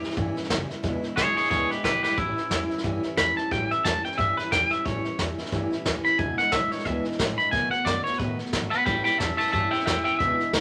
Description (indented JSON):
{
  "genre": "rockabilly",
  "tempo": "179 BPM",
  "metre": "4/4",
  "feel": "swing 58% on 8ths",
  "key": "unclear",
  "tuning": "A4 = 440 Hz",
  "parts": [
    { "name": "twangy electric guitar", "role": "melody", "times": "0.0-10.5 s", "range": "E4 to B5", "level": "-26 LUFS", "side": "equal", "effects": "none" },
    { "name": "picked steel-string acoustic guitar", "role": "accompaniment", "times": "0.0-10.6 s", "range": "E2 to F#4", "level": "-33 LUFS", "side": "equal", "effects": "none" },
    { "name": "upright bass", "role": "bass", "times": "0.0-10.6 s", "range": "E1 to A2", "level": "-37 LUFS", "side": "equal", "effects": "none" },
    { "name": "jazz brush drum kit", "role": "drums", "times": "0.0-10.6 s", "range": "hi-hat, kick drum, snare drum", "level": "-32 LUFS", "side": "equal", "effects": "none" }
  ],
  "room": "moderate studio reverb, RT60 0.6 s",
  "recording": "none",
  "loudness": "-25 LUFS",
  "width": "mono",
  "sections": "0.0-10.6 A section",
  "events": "drum fill 2.0",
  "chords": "0.0 A7; 0.8 E7; 2.2 A7; 6.2 E7; 7.5 B7; 8.9 A7"
}